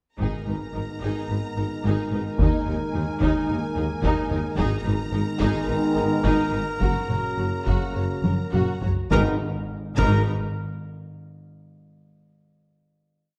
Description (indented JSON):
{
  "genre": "cinematic, epic orchestral film score",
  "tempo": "107 BPM",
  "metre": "4/4",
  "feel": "uneven beats",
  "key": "G# minor",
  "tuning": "A4 = 438 Hz",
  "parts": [
    { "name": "rich symphonic violin section", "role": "melody", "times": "0.2-10.3 s", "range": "G#5 to A#5", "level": "-40 LUFS", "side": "equal", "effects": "none" },
    { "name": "warm symphonic violin section", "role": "second line", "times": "0.2-10.3 s", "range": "D#4 to C#5", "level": "-38 LUFS", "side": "equal", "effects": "none" },
    { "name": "rich symphonic viola section", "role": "accompaniment", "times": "0.2-10.3 s", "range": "D#4 to F#4", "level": "-34 LUFS", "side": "equal", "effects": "none" },
    { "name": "dark French horn section", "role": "sustained chords", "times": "0.2-9.4 s", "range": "A#3 to F#4", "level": "-34 LUFS", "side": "equal", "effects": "none" },
    { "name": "warm trombone section", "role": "sustained chords", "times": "0.2-9.4 s", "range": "C#3 to G#3", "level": "-34 LUFS", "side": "equal", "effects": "none" },
    { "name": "mellow trumpet", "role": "stabs", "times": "0.2-10.2 s", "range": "A#4", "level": "-34 LUFS", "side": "equal", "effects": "none" },
    { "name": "mellow tuba", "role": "bass", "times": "0.2-10.2 s", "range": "F#1 to D#2", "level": "-34 LUFS", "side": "equal", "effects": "none" },
    { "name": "rich symphonic cello section", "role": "bass", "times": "0.2-10.3 s", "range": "D#2 to G#2", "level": "-32 LUFS", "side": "equal", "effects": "none" },
    { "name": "warm symphonic double bass section", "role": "bass", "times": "0.2-10.3 s", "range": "F#1 to D#2", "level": "-32 LUFS", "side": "equal", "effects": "none" },
    { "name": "taiko ensemble", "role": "drums", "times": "0.2-11.1 s", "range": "none", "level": "-30 LUFS", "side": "equal", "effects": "none" },
    { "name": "timpani", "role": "percussion", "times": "0.2-1.0, 9.1-10.2 s", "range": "G#2", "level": "-34 LUFS", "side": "equal", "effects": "none" }
  ],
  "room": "moderate scoring stage reverb, RT60 1.5 s",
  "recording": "dark, warm production",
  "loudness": "-24 LUFS",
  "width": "mono",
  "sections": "0.2-9.1 theme; 9.1-11.4 final chord",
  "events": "drum fill 8.2-9.1",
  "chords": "0.2 G#madd9; 2.4 D#sus4; 4.6 G#madd9; 6.8 F#; 9.1 G#madd9",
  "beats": "| 0.19 0.75 1.30 1.84 | 2.39 2.94 3.49 4.04 | 4.58 5.13 5.68 6.24 | 6.81 7.38 7.96 8.54 | 9.12 9.70 10.28 10.85"
}